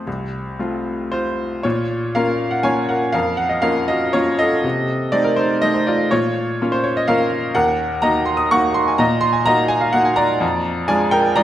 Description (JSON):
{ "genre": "classical, piano waltz", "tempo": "111-133 BPM", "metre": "3/4", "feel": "rubato", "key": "Bb minor", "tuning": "A4 = 440 Hz", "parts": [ { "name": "bright baby grand piano", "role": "solo", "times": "0.0-11.4 s", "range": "C2 to Eb6", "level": "-16 LUFS", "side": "equal", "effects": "none" } ], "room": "wet recital hall reverb, RT60 1.7 s", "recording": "none", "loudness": "-16 LUFS", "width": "side -12 dB against mid", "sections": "0.0-1.6 A section; 1.6-11.4 B section", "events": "none", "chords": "0.0 F; 1.6 Bbm; 4.6 Adim/C; 6.1 Bbm; 7.6 Ebm; 10.4 Ddim/F" }